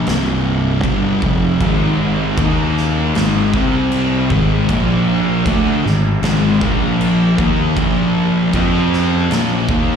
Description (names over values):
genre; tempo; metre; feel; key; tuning
stoner and doom metal; 78 BPM; 4/4; straight; unclear; A4 = 439 Hz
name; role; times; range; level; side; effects
thick fuzz guitar; riff; 0.0-10.0 s; C2 to F4; -18 LUFS; left 8 dB; distortion, slapback echo
thick fuzz guitar; riff; 0.0-10.0 s; C2 to F4; -19 LUFS; right 8 dB; distortion, slapback echo
fuzz fingered electric bass; bass; 0.0-10.0 s; C1 to F2; -21 LUFS; right 1 dB; overdrive, tube saturation
oversized low-tuned drum kit; drums; 0.1-9.9 s; crash cymbal, kick drum, snare drum; -22 LUFS; equal; none
thick fuzz guitar; riff; 1.6-10.0 s; Ab2 to F4; -22 LUFS; equal; distortion
room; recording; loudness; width
light reverb, small room ambience; live gig heard through the venue's PA, club reverb; -13 LUFS; side -7 dB against mid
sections
0.0-10.0 A section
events
none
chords
0.0 C5; 1.6 Ab5; 2.4 Eb5; 3.2 Ab5; 3.5 C5; 4.3 Ab5; 4.7 Bb5; 5.5 Ab5; 6.6 Bb5; 7.4 Eb5; 7.8 Bb5; 8.5 F5; 9.3 Bb5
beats
0.07 0.85 | 1.62 2.39 3.16 3.93 | 4.70 5.47 6.24 7.01 | 7.78 8.55 9.31